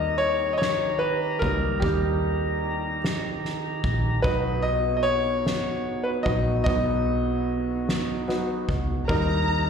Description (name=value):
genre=six-eight pop ballad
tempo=50 BPM (dotted quarters)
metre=6/8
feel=straight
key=B major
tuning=A4 = 438 Hz
part: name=clear concert grand piano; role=accompaniment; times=0.0-9.7 s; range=F#3 to D#5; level=-25 LUFS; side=left 1 dB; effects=plate reverb, slapback echo
part: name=tonewheel organ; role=sustained chords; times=0.0-9.7 s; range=D#3 to A#5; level=-30 LUFS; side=right 2 dB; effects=slow rotary speaker, plate reverb
part: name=vintage muted fingered electric bass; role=bass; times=0.0-9.7 s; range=A#1 to D#2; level=-29 LUFS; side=equal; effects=none
part: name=soft-mallet drum kit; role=drums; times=0.2-9.7 s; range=kick drum, ride cymbal, snare drum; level=-31 LUFS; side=equal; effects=none
part: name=warm symphonic violin section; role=second line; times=9.1-9.7 s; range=A#5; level=-27 LUFS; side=equal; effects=tape echo, plate reverb, slapback echo
room=moderate club reverb, RT60 0.7 s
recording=live gig heard through the venue's PA, recital hall reverb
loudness=-22 LUFS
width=side -6 dB against mid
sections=0.0-9.7 A section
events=grand piano solo 0.0-9.7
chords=0.0 D#; 4.2 B; 9.1 D#